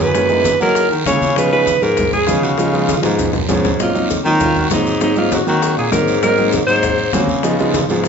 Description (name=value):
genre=Afro-Cuban jazz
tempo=198 BPM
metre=4/4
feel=straight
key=Db mixolydian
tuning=A4 = 440 Hz
part: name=warm alto saxophone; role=melody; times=0.0-7.2 s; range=Eb4 to Db5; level=-17 LUFS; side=right 1 dB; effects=none
part: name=warm grand piano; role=accompaniment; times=0.0-8.1 s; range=Fb3 to Gb4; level=-19 LUFS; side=right 1 dB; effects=none
part: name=breathy baritone saxophone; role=bass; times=0.0-8.1 s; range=Gb2 to Gb3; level=-19 LUFS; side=left 1 dB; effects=none
part: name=congas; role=percussion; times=0.0-8.1 s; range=none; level=-24 LUFS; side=equal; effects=none
part: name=guiro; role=percussion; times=0.0-8.1 s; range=none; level=-29 LUFS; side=right 4 dB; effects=none
part: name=maracas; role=percussion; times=0.0-8.1 s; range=none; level=-31 LUFS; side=left 6 dB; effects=none
part: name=bongos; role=percussion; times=0.1-8.1 s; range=none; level=-26 LUFS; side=left 6 dB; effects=none
room=wet large studio reverb, RT60 1.1 s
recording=band playing live in one room, nothing above 7.6 kHz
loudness=-13 LUFS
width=side -6 dB against mid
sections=0.0-8.1 A section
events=drum fill 2.9-3.8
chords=0.0 Gb9; 1.4 Db9; 3.8 Ab9; 7.4 Db9